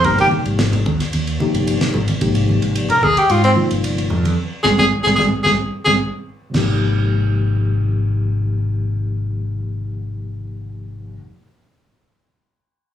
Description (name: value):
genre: electric jazz fusion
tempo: 111 BPM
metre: 4/4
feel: straight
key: Ab major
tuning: A4 = 440 Hz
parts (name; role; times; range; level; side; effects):
- bright tenor saxophone; melody; 0.0-5.9 s; C4 to Bb4; -15 LUFS; equal; slapback echo
- mellow tine electric piano; accompaniment; 0.0-11.3 s; C3 to G4; -22 LUFS; left 1 dB; medium stereo tremolo, slapback echo
- mellow fretless electric bass; bass; 0.0-11.2 s; G1 to Ab2; -20 LUFS; left 1 dB; analog chorus
- damped 70s drum kit; drums; 0.0-6.7 s; crash cymbal, kick drum, ride cymbal, snare drum, toms; -25 LUFS; right 1 dB; none
- congas; percussion; 0.3-6.8 s; none; -25 LUFS; equal; slapback echo
room: moderate club reverb, RT60 0.7 s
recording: live gig heard through the venue's PA, club reverb, small room ambience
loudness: -15 LUFS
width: side -10 dB against mid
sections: 0.0-6.5 A section; 6.5-10.9 B section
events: tenor saxophone solo 0.0-6.5; band accent 4.4-6.5; drum fill 5.5-6.5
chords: 0.0 Abmaj13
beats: | 0.04 0.58 1.12 1.66 | 2.21 2.75 3.29 3.83 | 4.37 4.92 5.46 6.00 | 6.54 7.08 7.62 8.17 | 8.71 9.25 9.79 10.34